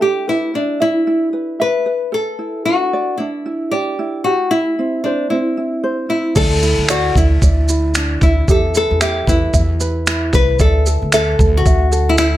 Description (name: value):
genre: acoustic pop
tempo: 113 BPM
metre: 4/4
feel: swing 60% on 16ths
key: D mixolydian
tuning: A4 = 439 Hz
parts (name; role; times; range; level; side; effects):
- nylon-string guitar; melody; 0.0-12.4 s; D4 to B4; -18 LUFS; left 2 dB; none
- ukulele; accompaniment; 0.0-12.4 s; C4 to E5; -22 LUFS; right 3 dB; none
- upright bass; bass; 6.4-12.4 s; C2 to E2; -16 LUFS; equal; none
- boom bap sampler-style drum kit; drums; 6.4-12.3 s; crash cymbal, finger snaps, kick drum, shaker; -17 LUFS; equal; overdrive
room: light reverb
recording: none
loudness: -13 LUFS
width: side -14 dB against mid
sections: 0.0-6.4 A section; 6.4-12.4 B section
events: none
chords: 0.0 Em; 2.1 Dsus2; 4.2 C; 6.4 Dsus2; 8.5 Em; 10.6 Dsus2